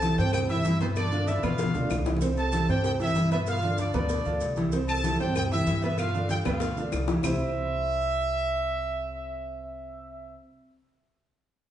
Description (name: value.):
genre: latin, salsa.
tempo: 191 BPM.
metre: 4/4.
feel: straight.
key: C major.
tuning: A4 = 439 Hz.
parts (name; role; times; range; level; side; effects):
clear horn section; melody; 0.0-10.3 s; C4 to A5; -30 LUFS; right 1 dB; none.
bright baby grand piano; accompaniment; 0.0-10.4 s; B2 to C5; -30 LUFS; right 2 dB; none.
upright bass; bass; 0.0-10.3 s; C2 to B2; -31 LUFS; left 1 dB; none.
congas; percussion; 0.0-7.3 s; none; -33 LUFS; left 2 dB; none.
cowbell and bongos; percussion; 0.0-7.3 s; none; -36 LUFS; left 3 dB; none.
maracas; percussion; 0.0-7.3 s; none; -46 LUFS; right 5 dB; none.
claves; percussion; 0.3-2.1, 4.9-7.3 s; none; -42 LUFS; left 4 dB; none.
room: wet large studio reverb, RT60 1.4 s.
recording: heard from further back in the room, nothing above 10.9 kHz.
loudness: -24 LUFS.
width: side -11 dB against mid.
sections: 0.0-2.2 A section; 2.2-7.2 B section; 7.2-9.7 C section.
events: drum fill 1.4-2.2, 6.5-7.2.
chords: 0.0 C; 1.0 G7; 2.2 C; 3.5 G7; 4.7 C; 6.0 G7; 7.2 C.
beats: 0.02 0.34 0.65 | 0.96 1.28 1.59 1.90 | 2.22 2.53 2.84 3.16 | 3.47 3.79 4.10 4.41 | 4.73 5.04 5.35 5.67 | 5.98 6.30 6.61 6.92 | 7.24 7.55 7.86 8.18 | 8.49 8.80 9.12 9.43.